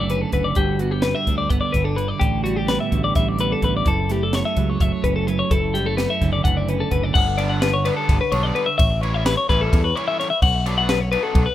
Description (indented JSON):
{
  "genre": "math rock and midwest emo",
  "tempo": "256 BPM (eighths)",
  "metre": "7/8",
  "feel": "straight",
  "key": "G lydian",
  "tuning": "A4 = 440 Hz",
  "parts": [
    { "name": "clean electric guitar", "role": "accompaniment", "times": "0.0-8.8 s", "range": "F#2 to F#4", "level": "-25 LUFS", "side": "right 8 dB", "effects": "spring reverb" },
    { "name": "twelve-string electric guitar", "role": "arpeggios", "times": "0.0-11.5 s", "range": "F#4 to F#5", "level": "-22 LUFS", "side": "left 5 dB", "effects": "analog delay" },
    { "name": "growling fingered electric bass", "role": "bass", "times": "0.0-11.4 s", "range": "F#1 to E2", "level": "-23 LUFS", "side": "equal", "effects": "overdrive" },
    { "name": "crisp fusion drum kit", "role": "drums", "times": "0.1-11.5 s", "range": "crash cymbal, hi-hat, kick drum, ride cymbal, snare drum", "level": "-22 LUFS", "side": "equal", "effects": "none" },
    { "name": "crunchy overdriven guitar", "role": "riff", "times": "7.4-11.4 s", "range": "B2 to E4", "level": "-28 LUFS", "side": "right 1 dB", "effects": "none" }
  ],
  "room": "little or no reverb",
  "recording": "rough home demo mix",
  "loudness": "-18 LUFS",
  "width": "side -12 dB against mid",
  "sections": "0.0-7.2 A section; 7.2-11.5 B section",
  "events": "none",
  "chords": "0.0 Bm11/F#; 0.6 Gmaj7; 2.2 A9sus4; 3.9 F#m7; 5.5 Bm11/F#; 7.2 Gmaj7; 8.8 A7; 10.4 Bm7",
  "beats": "0.10 0.34 | 0.58 0.81 1.05 1.28 1.52 1.75 1.99 | 2.22 2.46 2.69 2.93 3.17 3.40 3.63 | 3.87 4.11 4.34 4.58 4.81 5.05 5.28 | 5.52 5.75 5.99 6.22 6.46 6.69 6.92 | 7.16 7.39 7.63 7.86 8.10 8.33 8.56 | 8.79 9.03 9.26 9.49 9.73 9.96 10.19 | 10.43 10.66 10.89 11.13 11.36"
}